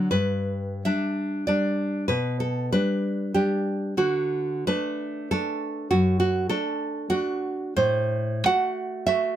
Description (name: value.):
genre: romantic piece for solo classical guitar.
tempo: 94 BPM.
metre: 3/4.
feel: uneven beats, rubato.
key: G major.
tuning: A4 = 442 Hz.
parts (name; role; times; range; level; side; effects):
nylon-string guitar; solo; 0.0-9.4 s; F#2 to F#5; -23 LUFS; right 1 dB; none.
room: little or no reverb.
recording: close, detailed microphones.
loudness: -23 LUFS.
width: side -11 dB against mid.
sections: 0.1-9.4 A section.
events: none.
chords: 0.1 G; 2.1 G/B; 4.0 D; 5.9 D/F#; 7.8 F#dim/A.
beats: | 0.12 0.85 1.47 | 2.08 2.72 3.34 | 3.97 4.66 5.30 | 5.90 6.50 7.11 | 7.77 8.46 9.06.